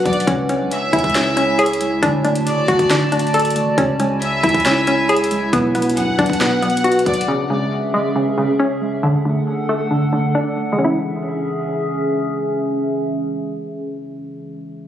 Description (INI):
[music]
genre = hip hop, trap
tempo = 137 BPM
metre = 4/4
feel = half-time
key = C# phrygian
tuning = A4 = 439 Hz
[part]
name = muted felt-like synth keys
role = accompaniment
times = 0.0-14.9 s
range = B2 to D5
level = -23 LUFS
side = right 1 dB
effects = chorus, low-pass filter
[part]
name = warbly tape-like pad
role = sustained chords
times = 0.0-14.1 s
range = C#4 to A5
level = -22 LUFS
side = right 1 dB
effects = chorus, built-in reverb, low-pass filter
[part]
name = hollow square pluck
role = arpeggios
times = 0.0-14.2 s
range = C#3 to A4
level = -19 LUFS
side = left 1 dB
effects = chorus, low-pass filter, tape echo
[part]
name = clear chamber violin section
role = second line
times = 0.1-7.3 s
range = D5 to F#5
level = -23 LUFS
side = left 1 dB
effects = tape echo
[part]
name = long sustained 808-style bass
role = bass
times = 0.1-7.3 s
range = D1 to F#2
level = -29 LUFS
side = left 1 dB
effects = none
[part]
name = trap drum kit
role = drums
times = 0.1-7.3 s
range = hi-hat, kick drum, snare drum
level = -23 LUFS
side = equal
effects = none
[sound]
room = light reverb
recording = recorded on a phone in the room, club reverb, compression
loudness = -15 LUFS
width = side -10 dB against mid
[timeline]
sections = 0.0-7.3 A section; 7.3-10.8 B section; 10.8-14.3 C section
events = filter sweep 7.3-10.8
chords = 0.3 C#m; 2.0 D; 3.8 C#m; 5.5 Bm; 7.3 C#m; 9.0 D; 10.8 C#m